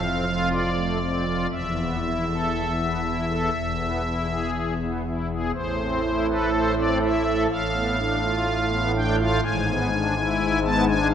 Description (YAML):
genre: classical, chorale-style piece for pipe organ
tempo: 59-64 BPM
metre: 4/4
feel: rubato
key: unclear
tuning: A4 = 440 Hz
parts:
  - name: pipe organ, strings celeste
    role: solo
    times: 0.0-11.1 s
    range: E1 to A5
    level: -21 LUFS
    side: equal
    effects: none
room: wet church reverb, RT60 3.5 s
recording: none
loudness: -21 LUFS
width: side -8 dB against mid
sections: 0.0-11.1 A section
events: none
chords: 0.0 F; 1.5 Esus4; 3.5 E; 5.6 Am; 7.5 Bm7b5/A; 9.4 E7/G#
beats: 0.51 | 1.50 2.51 3.53 4.54 | 5.55 6.55 7.51 8.47 | 9.44 10.41